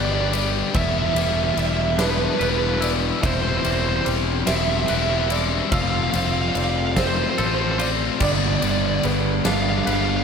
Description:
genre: post-rock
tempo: 48 BPM (dotted quarters)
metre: 6/8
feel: straight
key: C major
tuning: A4 = 440 Hz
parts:
  - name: fuzz lead guitar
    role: melody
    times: 0.0-10.2 s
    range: B4 to F5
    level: -25 LUFS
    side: right 5 dB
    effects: distortion, slapback echo, digital delay
  - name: twangy electric guitar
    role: arpeggios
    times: 0.0-10.2 s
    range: E3 to B4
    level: -32 LUFS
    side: equal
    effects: tremolo, slapback echo, digital delay
  - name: biting overdriven guitar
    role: riff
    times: 0.0-10.2 s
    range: G2 to G4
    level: -24 LUFS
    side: left 10 dB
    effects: none
  - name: fuzz fingered electric bass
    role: bass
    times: 0.0-10.2 s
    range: E1 to A1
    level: -25 LUFS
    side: equal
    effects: overdrive
  - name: felt-muted upright piano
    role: arpeggios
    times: 0.3-9.9 s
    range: B4 to E6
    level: -33 LUFS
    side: right 6 dB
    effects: slapback echo, digital delay
  - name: huge arena drum kit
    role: drums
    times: 0.3-10.1 s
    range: crash cymbal, kick drum, ride cymbal, snare drum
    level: -26 LUFS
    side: left 1 dB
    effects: none
  - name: overdriven semi-hollow guitar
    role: riff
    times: 8.2-10.2 s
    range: G2 to D4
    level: -26 LUFS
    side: right 11 dB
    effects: none
room: moderate concert hall reverb, RT60 2.3 s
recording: big arena sound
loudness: -18 LUFS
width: side -6 dB against mid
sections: 0.0-10.2 A section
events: none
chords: 0.0 G; 0.8 Em7; 3.2 Cmaj7/E; 5.7 Fadd9; 8.2 G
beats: | 0.75 1.99 | 3.24 4.48 | 5.72 6.97 | 8.21 9.46

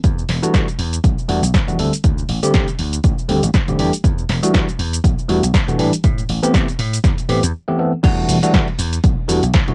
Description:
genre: filtered disco house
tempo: 120 BPM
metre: 4/4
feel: swing 57% on 16ths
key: E minor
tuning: A4 = 440 Hz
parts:
  - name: vintage slap bass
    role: bass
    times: 0.0-9.7 s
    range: E1 to A2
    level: -20 LUFS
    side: equal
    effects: tube saturation, sidechain pumping, low-pass filter
  - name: electronic kick drum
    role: drums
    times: 0.0-9.7 s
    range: none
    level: -16 LUFS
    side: equal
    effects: overdrive, cassette tape
  - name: punchy analog drum machine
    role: drums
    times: 0.0-9.7 s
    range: crash cymbal, hi-hat, shaker, snare drum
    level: -22 LUFS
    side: equal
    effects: sidechain pumping on hats, cassette tape, sidechain pumping on perc, sidechain pumping on cymbals
  - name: bell-like tine electric piano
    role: accompaniment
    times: 0.4-9.7 s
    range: D3 to A4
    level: -17 LUFS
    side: equal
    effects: phaser, sidechain pumping, low-pass filter, cassette tape
room: light reverb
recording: home recording on cassette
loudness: -14 LUFS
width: side -32 dB against mid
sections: 0.0-8.0 A section; 8.0-9.7 B section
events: filter sweep 0.0-8.0; break 7.5-8.0; drop 8.0-9.7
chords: 0.0 Em11; 1.8 D7sus4; 3.8 Em11; 6.0 Am9; 8.0 Em11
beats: | 0.04 0.54 1.04 1.54 | 2.04 2.54 3.04 3.54 | 4.04 4.54 5.04 5.54 | 6.04 6.54 7.04 7.54 | 8.04 8.54 9.04 9.54

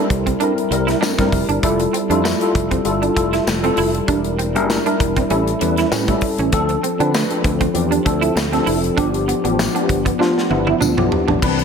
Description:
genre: polished 1980s jazz-funk pop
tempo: 98 BPM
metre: 4/4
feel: swing 54% on 16ths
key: unclear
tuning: A4 = 440 Hz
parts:
  - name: tine electric piano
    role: accompaniment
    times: 0.0-11.6 s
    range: E3 to B4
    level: -18 LUFS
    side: left 2 dB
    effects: ensemble chorus
  - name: electric guitar at the edge of break-up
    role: riff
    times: 0.0-11.6 s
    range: A3 to E4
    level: -23 LUFS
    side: right 8 dB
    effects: ensemble chorus
  - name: fingered electric bass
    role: bass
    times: 0.1-11.6 s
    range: E1 to D3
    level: -22 LUFS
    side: equal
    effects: none
  - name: modern studio drum kit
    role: drums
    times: 0.1-11.6 s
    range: crash cymbal, hi-hat, kick drum, snare drum, toms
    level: -22 LUFS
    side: equal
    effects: gated reverb
  - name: tambourine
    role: percussion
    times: 1.0-11.0 s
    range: none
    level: -30 LUFS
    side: left 7 dB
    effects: none
room: light reverb, small room ambience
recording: none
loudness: -15 LUFS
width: side -6 dB against mid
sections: 0.0-11.4 A section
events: drum fill 10.2-11.4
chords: 0.0 C7; 1.6 Fmaj9; 4.1 Em7b5; 5.3 A7; 6.5 Dm7; 9.0 G7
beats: 0.41 1.02 | 1.63 2.24 2.86 3.47 | 4.08 4.69 5.30 5.92 | 6.53 7.14 7.75 8.36 | 8.97 9.59 10.20 10.81 | 11.42

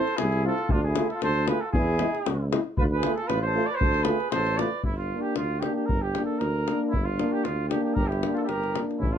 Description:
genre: balkan folk, Balkan brass band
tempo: 116 BPM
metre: 2/4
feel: swing 54% on 16ths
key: D dorian sharp4, G minor from 4.9 s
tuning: A4 = 440 Hz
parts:
  - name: mellow cornet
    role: melody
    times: 0.0-9.2 s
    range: E4 to D5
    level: -29 LUFS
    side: right 4 dB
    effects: none
  - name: warm flugelhorn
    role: second line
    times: 0.0-4.9, 8.0-9.2 s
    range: C#4 to B4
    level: -34 LUFS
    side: left 3 dB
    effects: none
  - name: clear euphonium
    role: accompaniment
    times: 0.0-9.0 s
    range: G#3 to C4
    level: -32 LUFS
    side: right 8 dB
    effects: none
  - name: warm trombone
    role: accompaniment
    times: 0.0-9.0 s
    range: D4 to F4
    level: -31 LUFS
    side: left 8 dB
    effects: none
  - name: davul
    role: percussion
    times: 0.1-9.2 s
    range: none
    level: -29 LUFS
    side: left 2 dB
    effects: none
  - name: mellow tuba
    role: bass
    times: 0.2-9.2 s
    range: G1 to E2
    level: -28 LUFS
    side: equal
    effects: none
room: light reverb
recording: none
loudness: -23 LUFS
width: side -9 dB against mid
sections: 0.0-4.9 A section; 4.9-9.2 B section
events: none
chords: 0.0 Am; 0.7 Dm; 1.8 E; 2.8 Dm; 4.9 Gm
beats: 0.20 | 0.71 1.23 | 1.75 2.27 | 2.79 3.30 | 3.82 4.34 | 4.86 5.38 | 5.90 6.42 | 6.94 7.46 | 7.98 8.50 | 9.02

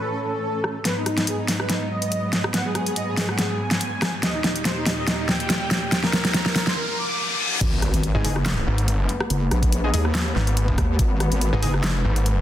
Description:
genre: heavy wobble dubstep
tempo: 142 BPM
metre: 4/4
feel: swing 54% on 16ths, half-time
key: G# minor from 7.6 s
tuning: A4 = 440 Hz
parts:
  - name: soft supersaw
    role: melody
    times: 0.0-7.5 s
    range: D#4 to D6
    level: -28 LUFS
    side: equal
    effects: digital delay
  - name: dark symphonic string section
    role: sustained chords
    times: 0.0-12.4 s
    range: D#2 to C#4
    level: -30 LUFS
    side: equal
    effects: sidechain pumping, low-pass filter
  - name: dubstep drum kit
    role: drums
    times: 0.6-12.3 s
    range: crash cymbal, handclaps, hi-hat, rim click, snare drum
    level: -24 LUFS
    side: equal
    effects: overdrive, low-pass filter on snare, studio reverb, low-pass filter on hats, low-pass filter on cymbals
  - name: riser, reverse cymbal and impact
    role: sound effects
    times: 2.3-9.3 s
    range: none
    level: -30 LUFS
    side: left 1 dB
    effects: none
  - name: wobble bass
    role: bass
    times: 7.6-12.0 s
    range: F#1 to D#2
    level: -22 LUFS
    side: equal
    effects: chorus, overdrive
  - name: electronic kick drum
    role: drums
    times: 7.6-11.1 s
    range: none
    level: -21 LUFS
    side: equal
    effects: overdrive, studio reverb
  - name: orchestra-hit-like synth stab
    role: stabs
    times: 8.1-11.7 s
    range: G#3 to G#4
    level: -31 LUFS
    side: left 1 dB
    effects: built-in reverb, digital delay
  - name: snarling distorted saw bass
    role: bass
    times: 8.1-12.4 s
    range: G#1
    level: -21 LUFS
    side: equal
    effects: distortion, overdrive
room: light reverb, digital ambience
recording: dense, heavily limited modern master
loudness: -20 LUFS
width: side -12 dB against mid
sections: 0.8-7.6 A section; 7.6-12.4 B section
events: build-up 0.8-7.6; drum fill 0.8-6.8; riser 2.3-7.6; break 6.8-7.6; reverse cymbal 6.8-7.6; drop 7.6-12.4; impact 7.6-9.3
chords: 0.0 A; 0.8 G#m7; 4.2 D#; 7.6 G#madd9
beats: 0.01 0.43 | 0.85 1.27 1.70 2.12 | 2.54 2.96 3.38 3.81 | 4.23 4.65 5.08 5.50 | 5.92 6.34 6.77 7.19 | 7.61 8.03 8.46 8.88 | 9.30 9.72 10.15 10.57 | 10.99 11.41 11.84 12.26

